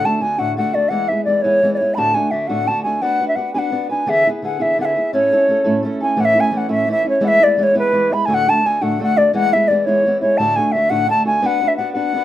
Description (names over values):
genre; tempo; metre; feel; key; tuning
celtic folk, Celtic jig; 114 BPM (dotted quarters); 6/8; straight; A major; A4 = 440 Hz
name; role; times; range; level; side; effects
bright wooden flute; melody; 0.0-12.2 s; B4 to B5; -15 LUFS; equal; none
fingerpicked steel-string acoustic guitar; accompaniment; 0.0-12.2 s; D2 to B4; -21 LUFS; equal; none
room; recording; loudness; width
moderate studio ambience, RT60 0.5 s; rough home demo mix; -14 LUFS; side -12 dB against mid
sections
0.0-6.2 A section; 6.2-12.2 A section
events
none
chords
0.0 D; 0.9 E; 2.0 D; 3.0 Bm; 4.1 E7; 5.1 A; 7.2 E; 8.3 D; 9.3 E; 10.4 D; 11.4 Bm